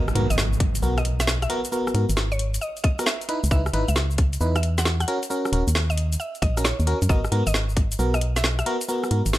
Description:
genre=UK garage, two-step garage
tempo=134 BPM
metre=4/4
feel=swing 67% on 16ths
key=G# minor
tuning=A4 = 440 Hz
part: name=mallet-like synth pluck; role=melody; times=0.0-8.7 s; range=C#5 to F#5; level=-32 LUFS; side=equal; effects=chorus, tape echo
part: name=FM electric piano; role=stabs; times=0.0-9.2 s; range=B3 to B4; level=-27 LUFS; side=equal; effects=chorus
part: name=organ-like FM bass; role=bass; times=0.0-9.4 s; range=D#1 to G#2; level=-23 LUFS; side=equal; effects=none
part: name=impact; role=sound effects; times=0.0-1.7 s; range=none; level=-31 LUFS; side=equal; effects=none
part: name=garage drum kit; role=drums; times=0.1-9.4 s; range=hi-hat, rim click, shaker, snare drum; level=-26 LUFS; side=equal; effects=none
part: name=electronic kick drum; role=drums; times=0.6-7.9 s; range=none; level=-21 LUFS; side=equal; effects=none
room=digital ambience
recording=none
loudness=-20 LUFS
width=side -15 dB against mid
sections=0.0-9.4 A section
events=impact 0.0-1.7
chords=0.0 G#m7; 3.3 C#m9; 5.1 D#m7; 7.1 G#m7

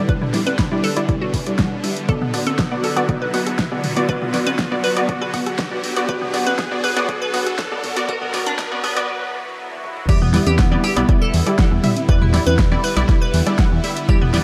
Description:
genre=progressive house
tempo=120 BPM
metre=4/4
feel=straight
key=E minor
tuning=A4 = 440 Hz
part: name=supersaw pad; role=sustained chords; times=0.0-14.4 s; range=D3 to F#4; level=-29 LUFS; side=equal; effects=phaser, sidechain pumping
part: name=unison pluck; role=stabs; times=0.0-14.4 s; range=G3 to F#5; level=-25 LUFS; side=equal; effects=lush chorus, sidechain pumping, dub echo
part: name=riser and swell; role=sound effects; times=0.2-10.1 s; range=none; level=-33 LUFS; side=equal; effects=none
part: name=glassy wavetable pluck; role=arpeggios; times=0.1-14.4 s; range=B3 to B4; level=-27 LUFS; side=equal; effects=chorus, phaser, sidechain pumping, dub echo
part: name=fat analog bass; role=bass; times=0.1-14.4 s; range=E1 to E2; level=-25 LUFS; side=equal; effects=sidechain pumping, high-pass filter
part: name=electronic kick drum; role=drums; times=0.1-14.2 s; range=none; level=-21 LUFS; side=equal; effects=none
part: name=pop drum kit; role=drums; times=0.1-14.4 s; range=crash cymbal, hi-hat, rim click, snare drum, toms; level=-28 LUFS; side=equal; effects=overdrive, sidechain pumping on hats, sidechain pumping on toms, sidechain pumping on cymbals
part: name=electronic toms, congas and woodblock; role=percussion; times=0.2-14.3 s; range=none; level=-28 LUFS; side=equal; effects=sidechain pumping on toms, sidechain pumping on perc
room=moderate lush hall reverb, RT60 1.5 s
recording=high-pass filter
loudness=-19 LUFS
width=mono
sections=0.0-10.1 A section; 10.1-14.4 B section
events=build-up 0.0-10.1; filter sweep on synth pluck 0.0-10.1; filter sweep 0.0-10.1; riser 0.2-9.1; break 9.1-10.1; swell 9.1-10.1; drum fill 9.7-10.1; drop 10.1-14.4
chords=0.0 Em7; 2.1 Bm; 10.1 Em7

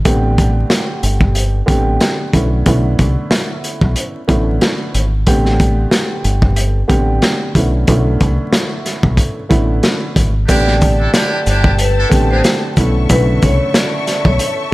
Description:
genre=hip hop, boom-bap hip-hop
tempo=92 BPM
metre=4/4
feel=swing 58% on 16ths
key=unclear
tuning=A4 = 441 Hz
part: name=dark upright piano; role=accompaniment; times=0.0-14.7 s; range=C#3 to G4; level=-19 LUFS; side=right 1 dB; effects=cassette tape
part: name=deep dub fingered electric bass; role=bass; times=0.1-14.4 s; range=G1 to C2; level=-15 LUFS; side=equal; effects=none
part: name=crunchy breakbeat drum kit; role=drums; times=0.1-14.6 s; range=hi-hat, kick drum, snare drum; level=-15 LUFS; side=equal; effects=none
part: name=vibraphone with hard mallets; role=melody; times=10.5-14.6 s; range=B4 to D5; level=-20 LUFS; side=left 1 dB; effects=none
part: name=warm studio string section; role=sustained chords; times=10.5-14.7 s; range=A4 to C#6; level=-25 LUFS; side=left 3 dB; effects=none
part: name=muted trumpet section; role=stabs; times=10.5-12.4 s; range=D4 to A4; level=-21 LUFS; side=right 1 dB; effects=ping-pong delay
part: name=maracas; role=percussion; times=10.5-14.6 s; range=none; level=-30 LUFS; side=left 4 dB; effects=none
room=studio ambience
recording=vinyl crackle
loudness=-12 LUFS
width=side -19 dB against mid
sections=0.0-10.5 A section; 10.5-14.7 B section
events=none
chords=0.1 Am11; 2.3 Bm11; 5.3 Am11; 7.5 Bm11; 10.5 Am11; 12.8 Bm11

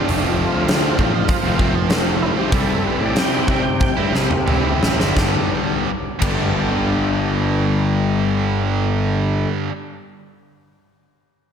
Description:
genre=classic rock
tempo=85-100 BPM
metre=4/4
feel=straight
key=G mixolydian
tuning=A4 = 441 Hz
part: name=overdriven tonewheel organ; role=melody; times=0.0-4.1 s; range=D4 to G5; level=-26 LUFS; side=right 2 dB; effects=chorus vibrato, slow rotary speaker, slapback echo
part: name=crunchy overdriven guitar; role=riff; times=0.0-9.7 s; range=F2 to G4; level=-23 LUFS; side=left 6 dB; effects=slapback echo
part: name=tight distorted guitar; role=riff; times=0.0-9.7 s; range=G2 to F4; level=-24 LUFS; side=right 8 dB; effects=distortion, slapback echo
part: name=fuzz picked electric bass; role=bass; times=0.1-9.4 s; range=F1 to C3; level=-22 LUFS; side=equal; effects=overdrive
part: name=huge arena drum kit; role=drums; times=0.1-6.4 s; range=crash cymbal, hi-hat, kick drum, snare drum, toms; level=-20 LUFS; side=equal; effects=none
room=moderate concert hall reverb, RT60 1.9 s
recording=big arena sound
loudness=-16 LUFS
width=side -7 dB against mid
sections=0.0-5.2 A section; 5.2-8.0 B section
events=tonewheel organ solo 0.0-5.2; slowing down 0.1-5.2; drum fill 3.8-5.2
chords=0.0 F; 2.5 C; 5.2 G

